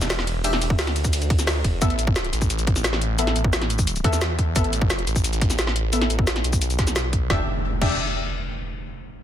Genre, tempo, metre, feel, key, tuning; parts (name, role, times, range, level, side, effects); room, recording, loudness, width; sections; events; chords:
dark technical drum and bass; 175 BPM; 4/4; straight; E minor; A4 = 440 Hz
phased detuned saw bass; bass; 0.0-8.0 s; E1 to E2; -24 LUFS; equal; phaser
drum and bass drum kit; drums; 0.0-7.9 s; cabasa, crash cymbal, hi-hat, snare drum; -25 LUFS; equal
jungle sampler-style drum kit; drums; 0.0-1.7 s; hi-hat, ride cymbal, snare drum; -33 LUFS; right 1 dB; high-pass filter on snare, high-pass filter on cymbals, high-pass filter on hats, high-pass filter on room
orchestra-hit-like synth stab; stabs; 0.4-7.9 s; B3 to E5; -28 LUFS; left 2 dB; built-in reverb, ping-pong delay
electronic kick drum; drums; 0.7-7.9 s; -21 LUFS; equal; overdrive
impact; sound effects; 7.3-8.7 s; -28 LUFS; equal
light reverb, digital ambience; dense, heavily limited modern master; -20 LUFS; side -10 dB against mid
0.0-7.3 A section; 7.3-8.7 B section
filter sweep on synth stab 0.0-7.3
0.0 Em7; 1.8 Asus2; 7.3 Em7